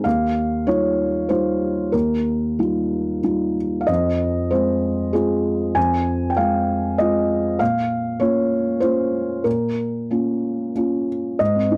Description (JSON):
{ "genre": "neoclassical minimalist piano", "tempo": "91-100 BPM", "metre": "3/4", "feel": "rubato", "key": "unclear", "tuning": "A4 = 440 Hz", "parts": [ { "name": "felt-muted upright piano", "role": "solo", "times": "0.0-11.8 s", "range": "Eb2 to Ab5", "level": "-21 LUFS", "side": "equal", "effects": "none" } ], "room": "light reverb", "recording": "dry, gritty hardware recording", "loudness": "-21 LUFS", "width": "mono", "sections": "0.0-11.4 A section", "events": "none", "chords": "0.0 Ebadd9; 3.9 Fm7; 7.6 Bbm", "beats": "| 0.05 0.67 1.29 | 1.94 2.59 3.24 | 3.88 4.52 5.15 | 5.76 6.38 6.99 | 7.60 8.21 8.81 | 9.45 10.11 10.76 | 11.40" }